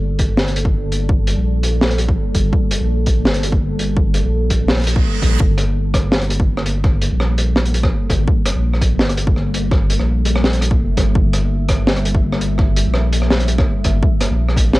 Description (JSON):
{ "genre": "half-time drum and bass", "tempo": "167 BPM", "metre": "4/4", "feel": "swing 54% on 16ths, half-time", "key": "G dorian", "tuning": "A4 = 440 Hz", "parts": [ { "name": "deep dark ambient pad", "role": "sustained chords", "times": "0.0-14.8 s", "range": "G3 to E5", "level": "-25 LUFS", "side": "equal", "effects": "chorus, built-in reverb, sidechain pumping" }, { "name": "saturated sub bass", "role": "bass", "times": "0.0-14.8 s", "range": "F1 to Bb1", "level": "-18 LUFS", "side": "equal", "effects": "none" }, { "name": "crunchy breakbeat drum kit", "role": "drums", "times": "0.2-14.8 s", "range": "hi-hat, rim click, snare drum", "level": "-20 LUFS", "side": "equal", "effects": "cassette tape" }, { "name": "electronic kick drum", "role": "drums", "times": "0.2-14.6 s", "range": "none", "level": "-17 LUFS", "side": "equal", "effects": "cassette tape" }, { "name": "reverse cymbal", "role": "sound effects", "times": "4.8-5.4 s", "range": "none", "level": "-26 LUFS", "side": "right 6 dB", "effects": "none" } ], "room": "light reverb", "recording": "home recording on cassette", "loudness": "-14 LUFS", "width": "side -19 dB against mid", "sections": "0.0-14.8 A section", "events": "reverse cymbal 4.8-5.4", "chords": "0.0 Gmadd9" }